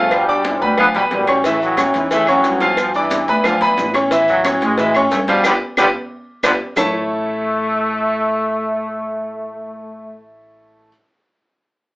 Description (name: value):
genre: latin, salsa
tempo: 180 BPM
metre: 4/4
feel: straight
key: A major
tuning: A4 = 440 Hz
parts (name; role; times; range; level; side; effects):
- bright trombone section; melody; 0.0-10.2 s; F2 to B3; -18 LUFS; equal; none
- clear grand piano; accompaniment; 0.0-10.9 s; E3 to D6; -17 LUFS; equal; none
- upright bass; bass; 0.0-10.9 s; G1 to A2; -28 LUFS; equal; none
- agogo bells and timbales; percussion; 0.1-6.8 s; none; -24 LUFS; equal; none
- claves; percussion; 0.1-6.8 s; none; -22 LUFS; left 1 dB; none
- congas; percussion; 0.1-6.8 s; none; -31 LUFS; equal; none
- cowbell and bongos; percussion; 0.1-6.8 s; none; -24 LUFS; left 1 dB; none
- maracas; percussion; 1.4-6.8 s; none; -34 LUFS; left 1 dB; none
room: wet studio ambience, RT60 0.5 s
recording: band playing live in one room, AM radio sound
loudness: -14 LUFS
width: side -22 dB against mid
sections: 0.0-6.8 A section; 6.8-9.4 B section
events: band accent 5.4-6.8; drum fill 5.9-6.8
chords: 0.1 G7; 1.4 A; 2.8 G7; 4.1 A; 5.4 G; 6.8 A